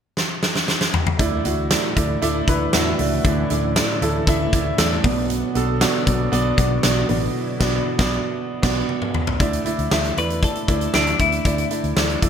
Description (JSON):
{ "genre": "1980s-style pop", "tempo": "117 BPM", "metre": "4/4", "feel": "straight", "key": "D major", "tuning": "A4 = 441 Hz", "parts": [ { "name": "huge arena drum kit", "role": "drums", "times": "0.2-12.3 s", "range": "crash cymbal, hi-hat, kick drum, snare drum, toms", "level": "-21 LUFS", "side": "equal", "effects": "gated reverb" }, { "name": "warm concert grand piano", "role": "accompaniment", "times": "1.2-12.3 s", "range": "B2 to E5", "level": "-22 LUFS", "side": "right 2 dB", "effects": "wide subtle chorus" }, { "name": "string machine, cellos", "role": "sustained chords", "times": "1.2-9.4 s", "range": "A2 to F#4", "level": "-29 LUFS", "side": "left 2 dB", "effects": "phaser, ensemble chorus" }, { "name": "vintage muted fingered electric bass", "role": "bass", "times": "1.2-12.3 s", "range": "A1 to E2", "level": "-25 LUFS", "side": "left 1 dB", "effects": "none" }, { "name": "twelve-string electric guitar", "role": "melody", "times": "10.2-11.7 s", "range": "D4 to B4", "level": "-23 LUFS", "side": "left 4 dB", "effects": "wide subtle chorus" } ], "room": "moderate plate reverb, RT60 1.5 s, small room ambience", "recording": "bright 1980s-style digital production", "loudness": "-18 LUFS", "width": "side -8 dB against mid", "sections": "0.0-1.2 A section; 1.2-9.4 B section; 9.4-12.3 C section", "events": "drum fill 0.2-1.2, 8.9-9.4; band accent 7.3-9.4", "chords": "0.0 N.C.; 1.2 Dsus2; 5.0 Bm; 9.4 Dsus2" }